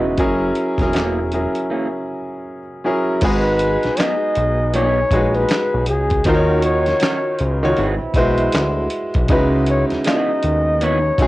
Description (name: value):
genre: R&B, neo-soul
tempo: 79 BPM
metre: 4/4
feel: swing 62% on 16ths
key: G# minor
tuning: A4 = 436 Hz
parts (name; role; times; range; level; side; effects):
- electric guitar through a small old amp; second line; 0.0-11.0 s; E3 to B4; -24 LUFS; right 3 dB; cassette tape, plate reverb
- bright concert grand piano; accompaniment; 0.0-11.3 s; C#3 to C#5; -20 LUFS; equal; low-pass filter, cassette tape
- fat analog bass; bass; 0.0-11.3 s; E1 to D#2; -21 LUFS; equal; tube saturation
- dusty soul sampler-style drum kit; drums; 0.2-11.3 s; crash cymbal, handclaps, hi-hat, kick drum, snare drum; -21 LUFS; equal; none
- breathy flugelhorn; melody; 3.2-11.3 s; G#4 to D#5; -20 LUFS; left 1 dB; cassette tape, plate reverb
- warm trombone section; stabs; 3.2-11.3 s; E3 to F#4; -28 LUFS; right 3 dB; none
room: light reverb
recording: home recording on cassette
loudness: -15 LUFS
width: side -18 dB against mid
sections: 0.0-3.2 A section; 3.2-11.3 B section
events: break 1.7-3.2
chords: 0.2 F#9; 3.2 G#m7; 6.3 D#m7; 7.8 G#7alt; 9.3 C#m11